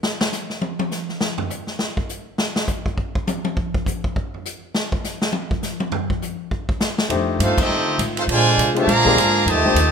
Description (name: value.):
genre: jazz, big band swing.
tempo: 204 BPM.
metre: 4/4.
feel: swing 60% on 8ths.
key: F mixolydian.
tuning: A4 = 438 Hz.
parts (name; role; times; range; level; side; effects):
swinging big-band drum kit; drums; 0.0-9.8 s; crash cymbal, hi-hat, kick drum, ride cymbal, snare drum, toms; -22 LUFS; equal; none.
bright upright piano; accompaniment; 7.1-9.8 s; Ab3 to C5; -21 LUFS; left 6 dB; none.
clear saxophone section; sustained chords; 7.1-9.9 s; D3 to F4; -27 LUFS; right 2 dB; none.
upright bass; bass; 7.1-9.9 s; C2 to D3; -22 LUFS; equal; none.
brilliant trumpet section; melody; 7.4-9.9 s; C4 to Bb5; -18 LUFS; right 1 dB; none.
mellow trombone section; second line; 7.4-9.9 s; C3 to F4; -22 LUFS; right 3 dB; none.
room: light reverb.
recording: minimal, uncompressed stereo recording.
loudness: -18 LUFS.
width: side -6 dB against mid.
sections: 0.0-7.1 A section; 7.1-9.9 B section.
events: drum solo 0.0-7.1; band accent 7.5.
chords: 0.0 N.C.; 7.1 F13; 8.3 Bb13.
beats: | 0.03 0.33 0.62 0.92 | 1.21 1.50 1.80 2.10 | 2.39 2.69 2.98 3.27 | 3.57 3.87 4.16 4.46 | 4.75 5.04 5.34 5.63 | 5.93 6.22 6.52 6.81 | 7.11 7.40 7.70 7.99 | 8.29 8.58 8.88 9.17 | 9.47 9.76.